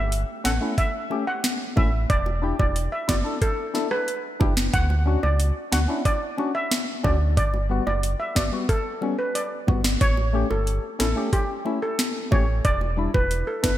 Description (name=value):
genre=dancehall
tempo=91 BPM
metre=4/4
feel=straight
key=unclear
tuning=A4 = 444 Hz
part: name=steel pan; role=melody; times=0.0-13.8 s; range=G4 to F#5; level=-27 LUFS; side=equal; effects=ping-pong delay
part: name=sub bass with octave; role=bass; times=0.0-13.8 s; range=E1 to D2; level=-24 LUFS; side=equal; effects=none
part: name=island pop drum kit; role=drums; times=0.1-13.8 s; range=hi-hat, kick drum, rim click, snare drum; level=-24 LUFS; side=equal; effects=overdrive, gated reverb
part: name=percussive organ stab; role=accompaniment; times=0.4-13.7 s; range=G3 to A4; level=-29 LUFS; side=left 3 dB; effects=chorus
part: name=bongos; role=percussion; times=1.1-13.3 s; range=none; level=-36 LUFS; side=right 4 dB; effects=none
room=light reverb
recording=bright 1980s-style digital production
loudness=-21 LUFS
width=side -13 dB against mid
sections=0.0-13.8 A section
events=none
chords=0.0 A7; 2.1 Em7; 4.7 Dmaj7; 7.4 Gmaj7; 10.0 A7; 12.6 Em7